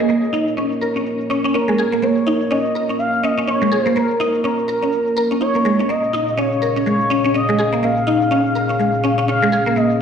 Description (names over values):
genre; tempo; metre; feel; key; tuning
afro house; 124 BPM; 4/4; swing 59% on 16ths; Bb minor; A4 = 440 Hz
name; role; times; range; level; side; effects
expressive portamento lead; melody; 0.0-10.0 s; Bb4 to F5; -20 LUFS; left 1 dB; wide subtle chorus, tape echo
dark analog pad; sustained chords; 0.0-10.0 s; Bb2 to F5; -23 LUFS; equal; lush chorus
mallet-like synth pluck; arpeggios; 0.0-9.8 s; Ab3 to Bb4; -19 LUFS; right 1 dB; phaser, ensemble chorus, tape echo
shaker; drums; 0.1-10.0 s; none; -51 LUFS; right 1 dB; none
room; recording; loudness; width
wet lush hall reverb, RT60 1.8 s; played on a big sound system in a bare room, large studio reverb; -15 LUFS; side -7 dB against mid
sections
0.0-10.0 A section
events
filter sweep on analog synth pad 0.0-10.0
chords
0.0 Bbm